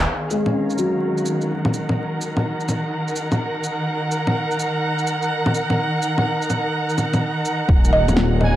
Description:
future garage; 126 BPM; 4/4; swing 65% on 16ths; Eb minor; A4 = 440 Hz
felt-muted upright piano; accompaniment; 0.0-8.6 s; Bb2 to Db4; -24 LUFS; left 2 dB; sidechain pumping, low-pass filter, analog delay
dark chamber string section; sustained chords; 0.0-8.6 s; Eb3 to Bb5; -22 LUFS; right 1 dB; sidechain pumping, low-pass filter
swelling detuned saw bass; bass; 0.0-0.1, 7.7-8.6 s; Eb1; -19 LUFS; equal; tube saturation
electronic shaker, bongos and snare drum; drums; 0.3-8.5 s; -23 LUFS; equal; overdrive, studio reverb
electronic kick drum; drums; 7.7-7.8 s; -17 LUFS; equal; overdrive, studio reverb
backwards swelling texture; texture; 7.9-8.6 s; Ab5; -30 LUFS; right 1 dB; built-in reverb
mallet-like synth pluck; melody; 7.9-8.6 s; Eb5; -20 LUFS; right 2 dB; chorus, phaser, tape echo
light reverb, digital ambience; dry, gritty hardware recording, vinyl crackle; -18 LUFS; side -13 dB against mid
0.1-7.7 A section
filter sweep on string section 0.1-7.7; filter sweep on felt piano 0.1-7.7
0.1 Ebm
| 0.07 0.54 1.02 1.50 | 1.97 2.45 2.92 3.40 | 3.88 4.35 4.83 5.31 | 5.78 6.26 6.74 7.21 | 7.69 8.16

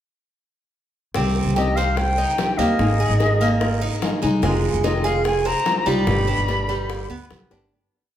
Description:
latin, Cuban son and guajira; 146 BPM; 4/4; straight; C minor; A4 = 439 Hz
nylon-string guitar; accompaniment; 1.1-7.7 s; B2 to Ab4; -26 LUFS; left 3 dB
upright bass; bass; 1.1-7.7 s; F1 to Eb2; -22 LUFS; equal
bongos; percussion; 1.1-7.6 s; -30 LUFS; left 2 dB
Cuban tres; arpeggios; 1.2-7.7 s; G3 to C5; -24 LUFS; right 3 dB; tape echo
guiro; percussion; 1.2-7.7 s; -36 LUFS; right 6 dB
jazz flute; melody; 1.6-7.3 s; Eb5 to B5; -24 LUFS; left 2 dB
wet large studio reverb, RT60 1.3 s; heard from further back in the room; -18 LUFS; side -11 dB against mid
1.1-7.7 verse
fade-out 6.1-7.7; drum fill 7.5
1.1 Cm; 2.8 Absus2; 4.4 Fm7; 6.1 G
| 1.15 1.56 1.97 2.38 | 2.79 3.20 3.61 4.02 | 4.43 4.84 5.25 5.66 | 6.07 6.48 6.89 7.30

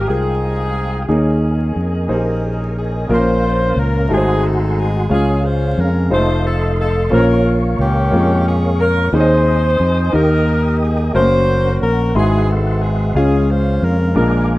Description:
gospel; 60 BPM (dotted quarters); 6/8; straight; Ab major; A4 = 440 Hz
warm grand piano; melody; 0.0-2.7 s; G4 to Ab4; -27 LUFS; equal
warm saxophone section; melody; 0.0-14.6 s; Bb3 to C5; -20 LUFS; left 2 dB
warm upright piano; accompaniment; 0.0-14.6 s; Ab2 to C6; -19 LUFS; equal
mellow tonewheel organ; sustained chords; 0.0-14.6 s; Ab3 to Eb6; -25 LUFS; right 1 dB; slow rotary speaker, chorus vibrato
fingered electric bass; bass; 0.0-14.6 s; F1 to F2; -17 LUFS; equal
small room ambience; rough home demo mix, vinyl crackle, nothing above 10.8 kHz; -13 LUFS; side -18 dB against mid
0.0-3.1 A section; 3.1-14.6 B section
0.0 Fm9; 1.1 Eb7sus4; 3.1 Bbm; 4.1 Ab7b9; 5.1 Db; 6.1 F7; 7.1 Bbm; 9.1 Ab/Eb; 10.1 Eb; 11.1 Gb; 12.1 Ab7alt; 13.2 Db
0.08 | 1.08 2.09 | 3.10 4.10 | 5.11 6.11 | 7.12 8.12 | 9.13 10.13 | 11.14 12.14 | 13.15 14.16

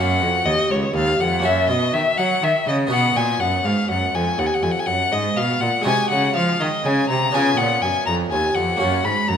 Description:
classical, baroque-style sonata movement with continuo; 81 BPM (dotted quarters); 12/8; straight; F# major; A4 = 440 Hz
rich violin; melody; 0.0-9.4 s; C#5 to B5; -20 LUFS; left 4 dB
harpsichord; accompaniment; 0.0-9.4 s; C#2 to F#4; -23 LUFS; right 2 dB
rich cello; bass; 0.0-9.4 s; C#2 to F#3; -23 LUFS; right 2 dB
moderate recital hall reverb, RT60 1.5 s; -17 LUFS; side -8 dB against mid
0.0-9.4 A section
0.0 F#; 2.9 B; 5.9 G#7/B#; 7.3 C#7; 8.8 F#
0.70 1.44 2.18 | 2.91 3.65 4.39 5.12 | 5.86 6.60 7.34 8.07 | 8.80

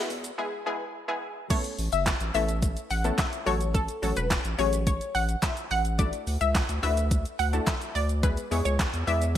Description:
dance-pop; 107 BPM; 4/4; straight; A major; A4 = 440 Hz
analog pluck; accompaniment; 0.0-9.4 s; F#3 to D5; -32 LUFS; left 1 dB; chorus, sidechain pumping
saturated sub bass; bass; 0.1-9.4 s; E1 to E2; -28 LUFS; equal; sidechain pumping
pop drum kit; drums; 0.1-9.4 s; crash cymbal, handclaps, hi-hat, kick drum, shaker, snare drum; -28 LUFS; equal; overdrive, gated reverb
analog pluck; melody; 1.5-9.4 s; A4 to F#5; -30 LUFS; left 2 dB; chorus, sidechain pumping
light reverb, digital ambience; bright 1980s-style digital production, high-pass filter; -25 LUFS; side -11 dB against mid
0.0-1.5 A section; 1.5-9.4 B section
build-up 0.0-1.5; drum fill 0.0-0.4; filter sweep 0.0-1.5; drop 1.5-9.4
0.0 E; 1.5 Aadd9; 3.5 F#m; 6.0 Dadd9; 8.2 E
0.38 0.94 | 1.50 2.06 2.62 3.19 | 3.75 4.31 4.87 5.43 | 5.99 6.55 7.11 7.67 | 8.23 8.79 9.35

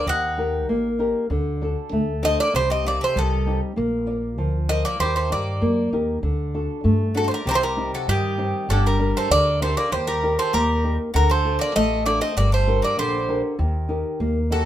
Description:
greek folk, Greek bouzouki band; 98 BPM; 2/4; straight; D phrygian dominant; A4 = 440 Hz
Greek bouzouki; melody; 0.0-14.7 s; G4 to F#5; -22 LUFS; right 1 dB
Greek bouzouki; second line; 0.0-14.7 s; D3 to Eb4; -30 LUFS; equal
flamenco guitar; accompaniment; 0.0-14.7 s; C3 to D5; -25 LUFS; left 1 dB
upright bass; bass; 0.1-14.6 s; G1 to G2; -24 LUFS; equal
light reverb; minimal, uncompressed stereo recording; -19 LUFS; side -12 dB against mid
0.0-6.2 A section; 6.2-14.7 B section
0.1 Eb; 1.3 D; 2.5 Cm; 3.8 Bb; 5.0 Eb; 6.2 D; 7.5 Cm; 8.7 Gm; 9.9 Eb; 11.1 D; 12.4 Gm; 13.6 Eb
| 0.07 0.69 | 1.30 1.92 | 2.54 3.15 | 3.77 4.39 | 5.00 5.62 | 6.23 6.85 | 7.46 8.07 | 8.69 9.30 | 9.91 10.53 | 11.14 11.75 | 12.36 12.98 | 13.59 14.20

